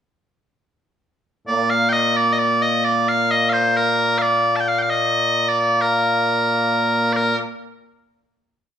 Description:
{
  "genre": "scottish traditional, Scottish pipe music",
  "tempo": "88 BPM (dotted quarters)",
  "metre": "6/8",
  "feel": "straight",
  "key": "Bb major",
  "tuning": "A4 = 439 Hz",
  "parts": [
    { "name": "loud bright bagpipes", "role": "solo", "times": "1.5-7.4 s", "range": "Bb2 to A5", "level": "-16 LUFS", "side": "equal", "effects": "none" }
  ],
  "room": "moderate large studio reverb, RT60 1.1 s",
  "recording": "band playing live in one room",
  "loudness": "-16 LUFS",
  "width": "side -9 dB against mid",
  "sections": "0.3-1.7 pickup bar; 1.7-7.2 A section; 7.2-8.5 final note",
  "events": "none",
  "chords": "none",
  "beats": "| 0.34 1.02 | 1.71 2.39 | 3.07 3.75 | 4.43 5.12 | 5.80 6.48 | 7.16"
}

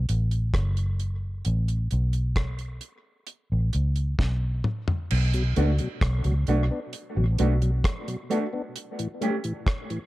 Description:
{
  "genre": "dub reggae",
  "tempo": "66 BPM",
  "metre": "4/4",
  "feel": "straight",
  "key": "B minor",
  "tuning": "A4 = 444 Hz",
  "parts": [
    { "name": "vintage muted fingered electric bass", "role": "bass", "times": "0.0-7.8 s", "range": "F#1 to C#2", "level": "-23 LUFS", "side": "equal", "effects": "none" },
    { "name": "deep reggae drum kit", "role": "drums", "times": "0.1-10.1 s", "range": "crash cymbal, hi-hat, kick drum, rim click, snare drum, toms", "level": "-28 LUFS", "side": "equal", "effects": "none" },
    { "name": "mellow tonewheel organ", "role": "accompaniment", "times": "5.3-10.0 s", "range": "A2 to D4", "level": "-32 LUFS", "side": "left 2 dB", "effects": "overdrive, chorus vibrato, slow rotary speaker, tape echo" },
    { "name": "mellow electric guitar", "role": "accompaniment", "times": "5.6-9.4 s", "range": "A3 to G4", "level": "-30 LUFS", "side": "right 1 dB", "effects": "tremolo, tape echo" }
  ],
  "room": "studio reverb",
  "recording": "dark, warm production",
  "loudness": "-23 LUFS",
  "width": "side -18 dB against mid",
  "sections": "0.0-5.1 A section; 5.1-10.1 B section",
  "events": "break 0.0-5.1, 8.8-10.1; drum fill 4.2-5.1",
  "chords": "0.0 B7(no3) (rootless); 1.5 A; 5.1 Bm7; 8.8 A7",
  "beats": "0.54 | 1.45 2.37 3.28 4.19 | 5.10 6.02 6.93 7.84 | 8.75 9.66"
}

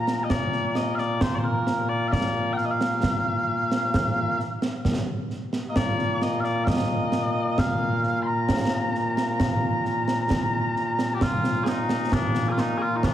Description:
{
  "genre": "scottish traditional, Scottish pipe music",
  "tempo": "66 BPM",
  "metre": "3/4",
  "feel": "straight",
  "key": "Bb major",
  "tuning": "A4 = 438 Hz",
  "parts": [
    { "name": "mellow small bagpipes", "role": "melody", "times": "0.0-13.1 s", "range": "Bb2 to C6", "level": "-24 LUFS", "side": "left 1 dB", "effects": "none" },
    { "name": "concert snare drum and concert bass drum", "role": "drums", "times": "0.1-13.1 s", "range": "none", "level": "-26 LUFS", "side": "right 1 dB", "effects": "none" }
  ],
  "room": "moderate scoring stage reverb, RT60 1.9 s",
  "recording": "heavily compressed radio sound",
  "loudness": "-22 LUFS",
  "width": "side -11 dB against mid",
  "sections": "0.3-11.2 A section; 11.2-13.1 B section",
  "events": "none",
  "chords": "none",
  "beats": "| 0.31 1.22 2.12 | 3.03 3.94 4.85 | 5.76 6.67 7.58 | 8.49 9.40 10.31 | 11.22 12.12 13.03"
}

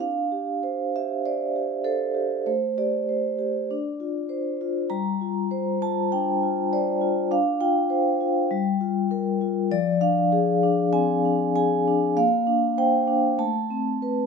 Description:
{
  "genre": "classical, contemporary piece for solo vibraphone",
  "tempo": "98 BPM",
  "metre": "4/4",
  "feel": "rubato",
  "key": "unclear",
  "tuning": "A4 = 440 Hz",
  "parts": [
    { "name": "vibraphone with soft mallets", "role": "solo", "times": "0.0-14.3 s", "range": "F3 to Bb5", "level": "-21 LUFS", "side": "equal", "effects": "none" }
  ],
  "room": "moderate stone room reverb, RT60 1.2 s",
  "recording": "none",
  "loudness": "-21 LUFS",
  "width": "side -5 dB against mid",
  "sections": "0.0-14.3 A section",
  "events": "none",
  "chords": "0.0 Dm7; 2.5 Am7; 3.7 Dm7; 4.9 Gm7; 7.3 Dm7; 8.5 Gm7; 9.7 Fm6; 12.2 Bb69; 13.4 Amadd9",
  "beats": "| 0.01 0.65 1.25 1.86 | 2.48 3.10 3.71 4.31 | 4.91 5.52 6.13 6.73 | 7.32 7.92 8.52 9.12 | 9.72 10.32 10.93 11.54 | 12.16 12.77 13.39 14.01"
}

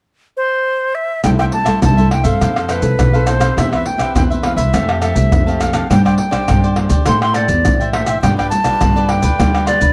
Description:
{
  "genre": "samba and choro",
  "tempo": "103 BPM",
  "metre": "4/4",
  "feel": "straight",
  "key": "C major",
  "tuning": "A4 = 441 Hz",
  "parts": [
    { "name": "reedy silver concert flute", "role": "melody", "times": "0.4-9.9 s", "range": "B4 to C6", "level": "-20 LUFS", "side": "equal", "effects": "none" },
    { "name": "cavaquinho", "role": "accompaniment", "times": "1.2-9.8 s", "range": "D4 to A5", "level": "-26 LUFS", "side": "equal", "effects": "none" },
    { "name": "nylon-string guitar", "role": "accompaniment", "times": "1.2-9.9 s", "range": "G2 to C5", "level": "-24 LUFS", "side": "equal", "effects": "none" },
    { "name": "upright bass", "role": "bass", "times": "1.2-9.9 s", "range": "B1 to A2", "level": "-19 LUFS", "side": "equal", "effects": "none" },
    { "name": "maracas, surdo, pandeiro and tamborim", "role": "percussion", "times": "1.2-9.9 s", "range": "none", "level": "-20 LUFS", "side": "equal", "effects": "none" }
  ],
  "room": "light reverb",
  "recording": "dark, warm production",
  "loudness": "-15 LUFS",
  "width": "mono",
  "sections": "0.0-1.2 A section; 1.2-9.9 B section",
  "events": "none",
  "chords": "0.0 N.C.; 1.2 C6; 2.4 Fmaj7; 3.6 Cmaj7/E; 4.7 Fadd9; 5.9 Gsus4; 7.1 Am7; 8.2 G7",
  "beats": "0.07 0.65 | 1.24 1.82 2.40 2.99 | 3.57 4.15 4.74 5.32 | 5.90 6.49 7.07 7.65 | 8.23 8.82 9.40"
}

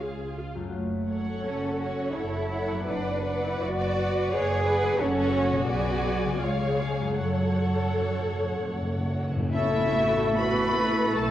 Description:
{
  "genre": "classical, slow romantic movement for symphony orchestra",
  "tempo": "69-89 BPM",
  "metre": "3/4",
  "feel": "rubato",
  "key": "F# minor",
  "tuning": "A4 = 441 Hz",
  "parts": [
    { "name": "rich symphonic violin section", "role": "melody", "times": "0.0-11.3 s", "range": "E5 to B5", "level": "-33 LUFS", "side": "left 2 dB", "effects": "none" },
    { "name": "warm symphonic violin section", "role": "second line", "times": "0.0-11.3 s", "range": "E4 to D5", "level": "-33 LUFS", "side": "left 2 dB", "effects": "none" },
    { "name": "warm symphonic viola section", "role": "accompaniment", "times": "0.0-11.3 s", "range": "A3 to D5", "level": "-32 LUFS", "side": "equal", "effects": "none" },
    { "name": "concert harp", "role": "arpeggios", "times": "0.0-11.3 s", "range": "F#2 to G#4", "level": "-35 LUFS", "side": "left 5 dB", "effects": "none" },
    { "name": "rich chamber double bass section", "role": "bass", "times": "0.0-11.3 s", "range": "F#1 to F#2", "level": "-33 LUFS", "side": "right 3 dB", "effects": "none" },
    { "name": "dark studio cello section", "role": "bass", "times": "0.7-11.3 s", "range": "A2 to G#4", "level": "-30 LUFS", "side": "right 2 dB", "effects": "none" },
    { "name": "timpani", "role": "percussion", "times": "2.9-9.5 s", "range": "F#2", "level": "-34 LUFS", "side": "equal", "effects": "none" },
    { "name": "cymbal swell and tam-tam", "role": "percussion", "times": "5.0-11.3 s", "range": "none", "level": "-38 LUFS", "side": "left 1 dB", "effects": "none" },
    { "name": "large flute ensemble", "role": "second line", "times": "9.5-11.3 s", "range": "C#6", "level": "-35 LUFS", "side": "right 3 dB", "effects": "none" },
    { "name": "warm oboe", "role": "second line", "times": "9.6-11.3 s", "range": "A4", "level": "-33 LUFS", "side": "right 2 dB", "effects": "none" },
    { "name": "mellow French horn section", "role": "sustained chords", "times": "9.6-11.3 s", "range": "E4 to A4", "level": "-30 LUFS", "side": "left 2 dB", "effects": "none" }
  ],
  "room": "wet concert hall reverb, RT60 2.1 s",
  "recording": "worn, warbling old tape, cassette tape, warbly pitch drift",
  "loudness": "-24 LUFS",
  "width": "side -12 dB against mid",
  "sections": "0.0-9.5 A section; 9.5-11.3 B section",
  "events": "timpani fill 7.2-9.5; band accent 9.5-10.4",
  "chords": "0.0 C#; 0.7 F#m; 2.9 Bm/F#; 5.0 F#m; 5.7 G#dim/B; 6.4 C#; 7.2 F#m; 9.5 A",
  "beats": "| 0.73 1.46 2.17 | 2.88 3.60 4.32 | 4.99 5.70 6.42 | 7.19 7.99 8.76 | 9.54 10.37 11.15"
}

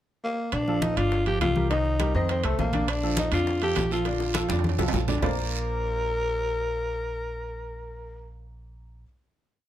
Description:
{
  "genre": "Afro-Cuban jazz",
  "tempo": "205 BPM",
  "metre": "4/4",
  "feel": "straight",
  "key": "Bb major",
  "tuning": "A4 = 440 Hz",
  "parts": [
    { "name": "growling tenor saxophone", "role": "melody", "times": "0.2-8.3 s", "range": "A3 to Bb4", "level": "-28 LUFS", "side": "left 1 dB", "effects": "plate reverb" },
    { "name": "upright bass", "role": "bass", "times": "0.5-9.0 s", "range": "G1 to F2", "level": "-29 LUFS", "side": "equal", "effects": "none" },
    { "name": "bongos", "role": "percussion", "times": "0.5-5.3 s", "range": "none", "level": "-36 LUFS", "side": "left 6 dB", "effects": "none" },
    { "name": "congas", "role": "percussion", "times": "0.5-5.3 s", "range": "none", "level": "-32 LUFS", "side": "left 1 dB", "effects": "none" },
    { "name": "timbales", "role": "percussion", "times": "0.5-5.3 s", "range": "none", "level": "-34 LUFS", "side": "right 8 dB", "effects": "none" },
    { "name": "clear baby grand piano", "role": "accompaniment", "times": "0.7-9.0 s", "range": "D3 to Eb5", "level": "-31 LUFS", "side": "right 1 dB", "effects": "none" },
    { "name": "guiro", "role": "percussion", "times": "2.9-5.3 s", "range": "none", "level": "-38 LUFS", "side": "right 7 dB", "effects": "none" }
  ],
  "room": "light reverb",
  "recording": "dark, warm production",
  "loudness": "-24 LUFS",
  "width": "side -12 dB against mid",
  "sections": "0.0-0.5 pickup bar; 0.5-5.2 A section; 5.2-7.6 final chord",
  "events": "drum fill 4.1-5.2",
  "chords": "0.0 N.C.; 0.5 Bbmaj7; 1.1 G5; 1.7 Cm7; 2.3 F7; 2.9 Bbmaj7; 5.2 Bbadd9",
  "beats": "0.24 | 0.54 0.83 1.12 1.42 | 1.71 2.00 2.30 2.59 | 2.88 3.18 3.47 3.77 | 4.06 4.35 4.64 4.94 | 5.23 5.52 5.82 6.11 | 6.40 6.69 6.99 7.28"
}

